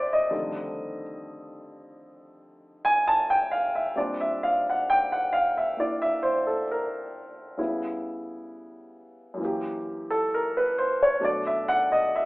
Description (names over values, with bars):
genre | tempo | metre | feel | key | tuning
solo jazz | 66 BPM | 4/4 | swing 68% on 8ths | unclear | A4 = 440 Hz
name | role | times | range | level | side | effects
dark baby grand piano | solo | 0.0-12.3 s | C2 to A5 | -24 LUFS | equal | none
room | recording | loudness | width
wet large studio reverb, RT60 0.8 s | band playing live in one room, telephone sound | -23 LUFS | side -21 dB against mid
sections
0.0-12.3 A section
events
grand piano solo 0.0-12.3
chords
0.3 F13; 4.0 Bb69; 7.6 C#m7b5; 9.4 F#7b9; 11.2 Bm7